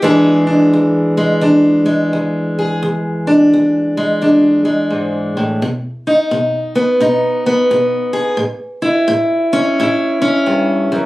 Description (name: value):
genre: blues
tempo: 86 BPM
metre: 4/4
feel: swing 62% on 8ths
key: E mixolydian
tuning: A4 = 441 Hz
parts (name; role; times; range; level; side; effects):
- fingerpicked acoustic archtop guitar; solo; 0.0-11.1 s; E2 to G#4; -12 LUFS; equal; none
room: light reverb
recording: recorded on a phone in the room, studio ambience, compression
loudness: -12 LUFS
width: side -18 dB against mid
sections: 0.0-11.1 A section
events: none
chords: 0.0 E7; 5.6 B; 8.4 A7